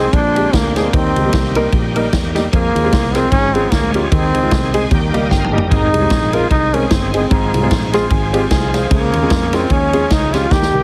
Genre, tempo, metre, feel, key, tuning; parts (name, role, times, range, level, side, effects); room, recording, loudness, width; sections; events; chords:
uptempo gospel; 150 BPM; 4/4; swing 57% on 8ths; A4 = 439 Hz
clear trombone; melody; 0.0-10.8 s; Bb3 to G4; -20 LUFS; equal
warm grand piano; accompaniment; 0.0-10.8 s; Ab2 to C6; -21 LUFS; equal
bright tonewheel organ; sustained chords; 0.0-10.8 s; D3 to Ab5; -26 LUFS; equal; slow rotary speaker, overdrive, chorus vibrato
fingered electric bass; bass; 0.0-10.8 s; G1 to F2; -22 LUFS; equal
swinging big-band drum kit; drums; 0.1-10.7 s; kick drum, ride cymbal, snare drum, toms; -20 LUFS; equal
light reverb, small room ambience; heavily compressed radio sound, multiband compression; -15 LUFS; mono
0.0-10.8 A section
tonewheel organ fill 4.5-5.7; grand piano fill 4.9-5.7, 7.7-8.9; drum fill 5.3-5.7, 10.5-10.8
0.1 Bb13; 0.9 Eb; 2.5 Fm; 3.3 Db/Ab; 4.1 Ab; 4.9 Eb; 5.7 Ab; 7.3 Fm/Ab; 8.9 Db